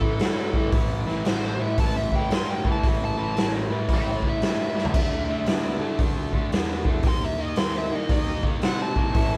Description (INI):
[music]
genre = blues rock power trio and southern rock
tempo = 114 BPM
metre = 4/4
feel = swing 64% on 8ths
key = unclear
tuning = A4 = 435 Hz
[part]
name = fuzz lead guitar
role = melody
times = 0.0-9.3 s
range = A4 to C6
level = -32 LUFS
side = equal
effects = wah, distortion
[part]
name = raw garage guitar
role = riff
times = 0.0-9.4 s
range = A2 to C4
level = -31 LUFS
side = equal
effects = overdrive
[part]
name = fuzz picked electric bass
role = bass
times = 0.0-9.4 s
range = A1 to D#3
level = -34 LUFS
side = equal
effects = overdrive
[part]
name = raw garage drum kit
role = drums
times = 0.0-9.3 s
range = crash cymbal, hi-hat, kick drum, snare drum, toms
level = -26 LUFS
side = equal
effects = none
[part]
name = overdriven tonewheel organ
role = sustained chords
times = 9.1-9.4 s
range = A3 to C#5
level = -38 LUFS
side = equal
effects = slow rotary speaker
[sound]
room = moderate large studio reverb, RT60 0.9 s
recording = band playing live in one room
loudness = -24 LUFS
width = mono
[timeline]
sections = 0.0-9.4 A section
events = lead electric guitar solo 0.0-9.4; drum fill 4.7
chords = 0.0 A5; 4.9 D5; 7.1 D#5